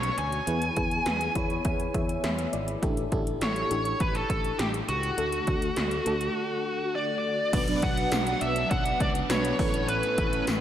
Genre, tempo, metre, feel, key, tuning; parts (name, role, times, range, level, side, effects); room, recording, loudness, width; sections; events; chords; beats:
1980s-style pop; 102 BPM; 4/4; straight; B minor; A4 = 441 Hz
high-gain lead guitar; melody; 0.0-10.4 s; F#4 to G#5; -29 LUFS; equal; distortion, digital delay, slapback echo
FM electric piano with tremolo; accompaniment; 0.0-10.6 s; A2 to B5; -32 LUFS; left 1 dB; phaser, slapback echo
fingered electric bass; bass; 0.0-10.6 s; G#1 to E2; -33 LUFS; equal
80s electronic pad drums; drums; 0.0-10.6 s; crash cymbal, hi-hat, kick drum, snare drum, tambourine; -30 LUFS; equal; overdrive
biting overdriven guitar; accompaniment; 7.5-10.6 s; A2 to B3; -38 LUFS; right 1 dB; ensemble chorus, slapback echo
lush unison pad; sustained chords; 7.5-10.6 s; F#3 to D4; -35 LUFS; right 1 dB; chorus
mellow synth brass; stabs; 7.7-9.5 s; F#3 to B4; -36 LUFS; right 4 dB
wet lush hall reverb, RT60 2.8 s; big arena sound; -25 LUFS; side -10 dB against mid
0.0-7.5 A section; 7.5-10.6 B section
FM electric piano fill 1.1-2.8
0.5 E; 2.8 A7sus4; 5.2 D; 7.5 Bm; 9.6 Aadd9
| 0.47 1.06 1.65 2.24 | 2.83 3.41 4.00 4.59 | 5.18 5.77 6.36 6.94 | 7.53 8.12 8.71 9.30 | 9.88 10.47